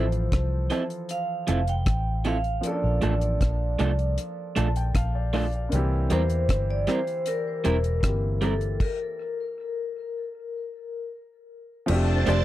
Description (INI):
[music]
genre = lovers rock reggae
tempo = 78 BPM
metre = 4/4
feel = straight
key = F major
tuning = A4 = 439 Hz
[part]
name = vibraphone with medium hard mallets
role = melody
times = 0.0-12.4 s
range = A4 to G5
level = -31 LUFS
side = left 1 dB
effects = tape echo
[part]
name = warm baby grand piano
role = accompaniment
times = 0.0-12.4 s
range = D3 to A5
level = -32 LUFS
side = equal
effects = tape echo
[part]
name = electric guitar through a small old amp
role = stabs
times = 0.0-12.4 s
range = F3 to C5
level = -26 LUFS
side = right 3 dB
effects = none
[part]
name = vintage muted fingered electric bass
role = bass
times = 0.0-12.4 s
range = E1 to E2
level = -25 LUFS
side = equal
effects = none
[part]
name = deep reggae drum kit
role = drums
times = 0.1-12.4 s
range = crash cymbal, hi-hat, kick drum, rim click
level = -28 LUFS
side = equal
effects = tape echo
[part]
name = phased string machine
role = second line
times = 11.9-12.4 s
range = D4 to A5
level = -28 LUFS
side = equal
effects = ensemble chorus, phaser
[sound]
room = little or no reverb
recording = dry, close 1970s-style studio recording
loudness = -23 LUFS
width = side -14 dB against mid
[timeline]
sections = 0.0-11.9 A section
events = grand piano fill 4.2-5.7; stop 8.8-11.9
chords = 0.0 Fmaj7; 2.6 Bbmaj7; 5.7 C7; 8.8 N.C.; 11.9 F69